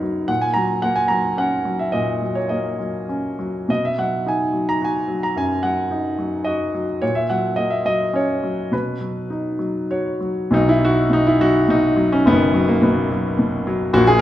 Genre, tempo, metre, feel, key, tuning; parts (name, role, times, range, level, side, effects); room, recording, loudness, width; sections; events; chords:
classical, lyrical solo piano; 96-111 BPM; 3/4; rubato; B major; A4 = 440 Hz
warm grand piano; solo; 0.0-14.2 s; F#1 to A#5; -17 LUFS; equal
wet recital hall reverb, RT60 1.4 s; minimal, uncompressed stereo recording; -17 LUFS; side -13 dB against mid
0.0-10.5 A section; 10.5-14.2 A section
grand piano fill 9.6-10.5
0.3 F#/A#; 3.7 B; 7.0 F#/A#; 8.7 Badd9; 10.5 B